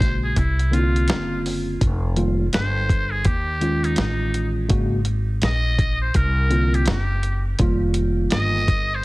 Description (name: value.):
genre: hip hop, jazz-hop.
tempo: 83 BPM.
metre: 4/4.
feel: swing 62% on 16ths.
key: F minor.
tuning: A4 = 440 Hz.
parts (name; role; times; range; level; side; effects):
trumpet with metal mute; melody; 0.0-9.0 s; Eb4 to Eb5; -27 LUFS; equal; tape echo.
tine electric piano; accompaniment; 0.0-8.6 s; Db3 to Gb4; -24 LUFS; equal; none.
upright bass; bass; 0.0-9.0 s; F1 to Eb2; -22 LUFS; equal; none.
dusty soul sampler-style drum kit; drums; 0.0-8.9 s; hi-hat, kick drum, snare drum; -22 LUFS; equal; none.
room: little or no reverb.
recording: heavily compressed radio sound.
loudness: -18 LUFS.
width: side -21 dB against mid.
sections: 0.0-9.0 A section.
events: none.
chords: 0.4 C9sus4; 1.8 F9sus4; 3.3 Eb9sus4; 4.7 Ab9sus4; 6.2 C9sus4; 7.6 F9sus4.